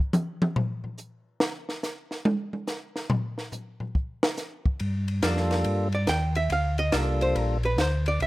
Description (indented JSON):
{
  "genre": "soul jazz organ trio",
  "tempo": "141 BPM",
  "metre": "4/4",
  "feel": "swing 66% on 8ths",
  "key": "unclear",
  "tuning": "A4 = 440 Hz",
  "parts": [
    { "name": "compact cocktail drum kit", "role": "drums", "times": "0.1-8.3 s", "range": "hi-hat, kick drum, ride cymbal, snare drum, toms", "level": "-27 LUFS", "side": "equal", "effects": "none" },
    { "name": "mellow tonewheel organ", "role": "bass", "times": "4.8-8.3 s", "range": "Bb1 to G2", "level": "-26 LUFS", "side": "equal", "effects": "chorus vibrato, slow rotary speaker" },
    { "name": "percussive tonewheel organ", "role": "melody", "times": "5.2-7.6 s", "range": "G3 to A4", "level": "-29 LUFS", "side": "equal", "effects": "slow rotary speaker, overdrive" },
    { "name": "archtop guitar, miked and amplified", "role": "accompaniment", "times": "5.9-8.3 s", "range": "Bb4 to G5", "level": "-27 LUFS", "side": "right 2 dB", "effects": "none" }
  ],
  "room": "studio ambience",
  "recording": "rough home demo mix",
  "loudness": "-24 LUFS",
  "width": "side -18 dB against mid",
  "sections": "0.0-8.3 A section",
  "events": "hollow-body jazz guitar solo 0.0-8.3; drum solo 0.0-4.8",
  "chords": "0.0 N.C.; 4.8 Gm7"
}